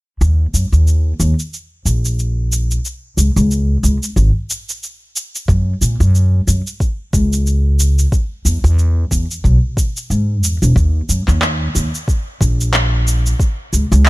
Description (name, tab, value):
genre	sunset chillout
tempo	91 BPM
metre	4/4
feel	swing 57% on 16ths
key	unclear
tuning	A4 = 439 Hz
part	upright bass	bass	0.2-14.1 s	E1 to Bb2	-13 LUFS	equal	none
part	electronic shaker and handclaps	drums	0.2-14.1 s	none	-21 LUFS	equal	none
part	electronic kick drum	drums	5.5-13.5 s	none	-16 LUFS	equal	none
room	little or no reverb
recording	none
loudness	-13 LUFS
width	side -20 dB against mid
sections	0.2-10.8 A section; 10.8-14.1 B section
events	none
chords	none